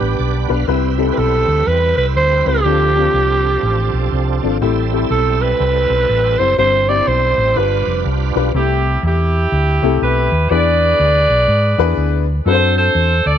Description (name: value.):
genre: gospel.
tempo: 122 BPM.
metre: 4/4.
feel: swing 62% on 8ths.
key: C major.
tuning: A4 = 440 Hz.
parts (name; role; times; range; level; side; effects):
growling alto saxophone; melody; 0.0-8.1 s; G4 to D5; -16 LUFS; right 2 dB; none.
warm upright piano; accompaniment; 0.0-13.1 s; G2 to D5; -20 LUFS; left 14 dB; none.
bright tonewheel organ; sustained chords; 0.0-8.5 s; F3 to F5; -23 LUFS; right 13 dB; slow rotary speaker, overdrive, chorus vibrato.
hollow-body short-scale fingered electric bass; bass; 0.0-13.4 s; F1 to G#2; -17 LUFS; equal; none.
bright saxophone section; melody; 8.6-13.4 s; E4 to D5; -16 LUFS; right 1 dB; none.
room: light reverb, small room ambience.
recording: 1960s-style stereo with parts hard left and right.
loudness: -13 LUFS.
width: side -9 dB against mid.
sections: 0.0-8.5 A section; 8.5-13.4 B section.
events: tonewheel organ fill 0.0-0.7.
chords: 0.0 G; 0.7 Cmaj7; 2.6 Dm7; 4.6 Am7; 6.6 C/G; 7.6 G7; 8.5 C6; 10.5 E7; 12.5 D7.